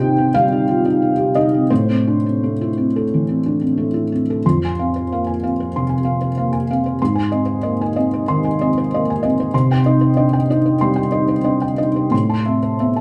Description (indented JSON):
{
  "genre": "neoclassical minimalist piano",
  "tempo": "86-97 BPM",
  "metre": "4/4",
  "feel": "rubato",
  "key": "unclear",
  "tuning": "A4 = 439 Hz",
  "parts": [
    { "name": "felt-muted upright piano", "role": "solo", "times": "0.0-13.0 s", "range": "F2 to C6", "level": "-18 LUFS", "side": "equal", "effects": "none" }
  ],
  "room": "wet studio reverb, RT60 0.6 s",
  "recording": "band playing live in one room",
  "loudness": "-18 LUFS",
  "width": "mono",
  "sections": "0.0-4.4 A section; 4.4-13.0 B section",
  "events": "none",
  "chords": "0.0 Cm; 1.7 Am; 4.4 Fm; 7.0 Ab; 9.5 Cm; 12.1 Am",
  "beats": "0.35 1.02 | 1.70 2.40 3.09 3.76 | 4.44 5.08 5.72 6.36 | 7.00 7.63 8.27 8.90 | 9.52 10.15 10.79 11.44 | 12.12 12.80"
}